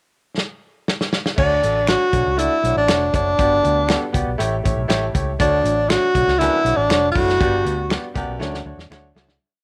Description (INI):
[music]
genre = uptempo 1960s-style soul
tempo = 119 BPM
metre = 4/4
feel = straight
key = D major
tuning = A4 = 435 Hz
[part]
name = warm soul drum kit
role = drums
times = 0.4-9.4 s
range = crash cymbal, hi-hat, kick drum, snare drum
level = -25 LUFS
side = equal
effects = none
[part]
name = breathy tenor saxophone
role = melody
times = 1.4-8.1 s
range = D4 to F#4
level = -20 LUFS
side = equal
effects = none
[part]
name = clear baby grand piano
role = accompaniment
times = 1.4-9.3 s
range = G2 to D5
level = -28 LUFS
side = equal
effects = none
[part]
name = vintage muted fingered electric bass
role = bass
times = 1.4-9.4 s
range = F1 to E2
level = -27 LUFS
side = equal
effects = none
[part]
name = finger snap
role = percussion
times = 1.9-9.0 s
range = none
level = -34 LUFS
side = equal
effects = none
[part]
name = warm baritone saxophone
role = riff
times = 5.4-9.4 s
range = D2 to A2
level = -30 LUFS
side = equal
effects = none
[part]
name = congas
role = percussion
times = 5.4-9.3 s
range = none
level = -38 LUFS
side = equal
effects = none
[sound]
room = light reverb, small room ambience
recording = none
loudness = -19 LUFS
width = mono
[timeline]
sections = 0.0-1.4 pickup bar; 1.4-9.4 A section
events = drum fill 0.4-1.4, 8.4-9.4; fade-out 7.4-9.4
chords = 0.0 N.C.; 1.4 Dmaj7; 3.4 Gmaj7; 4.4 A7; 5.4 Dmaj7; 7.4 Gmaj7; 8.4 Dmaj7